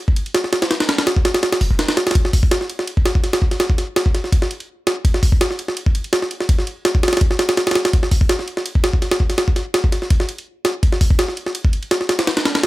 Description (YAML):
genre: drum and bass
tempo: 166 BPM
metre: 4/4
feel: straight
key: none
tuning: none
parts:
  - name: jungle sampler-style drum kit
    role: drums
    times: 0.1-12.7 s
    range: hi-hat, kick drum, ride cymbal, snare drum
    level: -15 LUFS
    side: equal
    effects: small room ambience
room: little or no reverb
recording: none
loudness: -16 LUFS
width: side -18 dB against mid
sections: 0.0-12.7 A section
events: none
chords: none